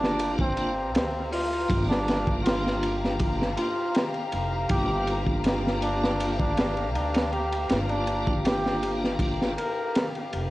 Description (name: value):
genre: trip hop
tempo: 80 BPM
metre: 4/4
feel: straight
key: G minor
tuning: A4 = 440 Hz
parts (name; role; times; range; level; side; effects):
- trumpet with bucket mute; melody; 0.0-10.1 s; C4 to Bb4; -30 LUFS; equal; cassette tape, tape echo
- tonewheel organ; accompaniment; 0.0-9.5 s; Bb3 to F4; -33 LUFS; equal; overdrive, chorus vibrato, slow rotary speaker, tremolo, tape echo
- muted studio violin section; sustained chords; 0.0-10.5 s; G4 to Bb5; -33 LUFS; left 2 dB; none
- upright bass; bass; 0.0-10.5 s; F1 to D2; -32 LUFS; equal; none
- crunchy breakbeat drum kit; drums; 0.0-10.5 s; hi-hat, kick drum, ride cymbal, snare drum; -27 LUFS; equal; cassette tape
room: light reverb, studio reverb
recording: home recording on cassette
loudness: -24 LUFS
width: side -17 dB against mid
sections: 0.0-10.5 A section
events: none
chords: 0.0 Gm7